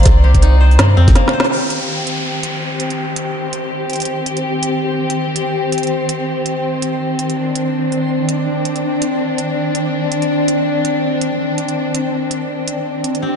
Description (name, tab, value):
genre	half-time drum and bass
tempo	164 BPM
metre	4/4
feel	swing 58% on 16ths, half-time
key	C minor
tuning	A4 = 440 Hz
part	dark chamber string section	sustained chords	0.0-13.4 s	Eb3 to D5	-18 LUFS	left 1 dB	sidechain pumping, low-pass filter
part	koto	arpeggios	0.0-3.9, 13.2-13.4 s	C3 to C5	-23 LUFS	left 4 dB	tape echo
part	saturated sub bass	bass	0.0-1.1 s	C2 to G2	-10 LUFS	equal	none
part	organic electronic drum kit	drums	0.0-13.2 s	hi-hat, snare drum	-20 LUFS	right 1 dB	overdrive
part	electronic kick drum	drums	0.1-1.1 s	none	-12 LUFS	equal	none
part	downlifter	sound effects	1.5-4.4 s	none	-25 LUFS	equal	none
part	backwards swelling texture	texture	2.4-13.4 s	C4 to C5	-24 LUFS	equal	built-in reverb, ensemble chorus
room	wet lush hall reverb, RT60 1.6 s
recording	dreamy mix soaked in reverb, nothing above 10.6 kHz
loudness	-14 LUFS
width	side -7 dB against mid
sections	0.0-1.5 A section; 1.5-13.4 B section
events	drop 0.0-1.5; drum fill 1.2-1.5; band accent 1.4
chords	0.0 Cm